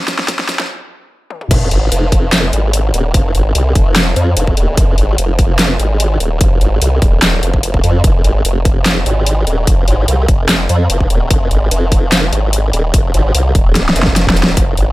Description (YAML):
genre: heavy wobble dubstep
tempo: 147 BPM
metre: 4/4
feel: half-time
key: F minor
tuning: A4 = 439 Hz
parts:
  - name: dubstep drum kit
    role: drums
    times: 0.1-14.9 s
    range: crash cymbal, handclaps, hi-hat, snare drum, toms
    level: -15 LUFS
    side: equal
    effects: none
  - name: electronic kick drum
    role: drums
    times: 0.3-14.7 s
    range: none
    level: -13 LUFS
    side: equal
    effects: none
  - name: formant-sweep wobble bass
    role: bass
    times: 1.5-14.9 s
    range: Eb1 to F2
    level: -13 LUFS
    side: equal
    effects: chorus, overdrive
room: digital ambience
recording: high-pass filter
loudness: -10 LUFS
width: side -18 dB against mid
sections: 0.0-1.5 A section; 1.5-14.9 B section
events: build-up 0.0-1.5; drum fill 0.0-0.7, 1.3, 13.8-14.6; filter sweep 0.0-1.5; stop 0.7-1.5; drop 1.5-14.9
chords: none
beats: 0.28 0.69 1.10 | 1.51 1.92 2.33 2.73 | 3.14 3.55 3.96 4.37 | 4.77 5.18 5.59 6.00 | 6.41 6.82 7.22 7.63 | 8.04 8.45 8.86 9.26 | 9.67 10.08 10.49 10.90 | 11.30 11.71 12.12 12.53 | 12.94 13.35 13.75 14.16 | 14.57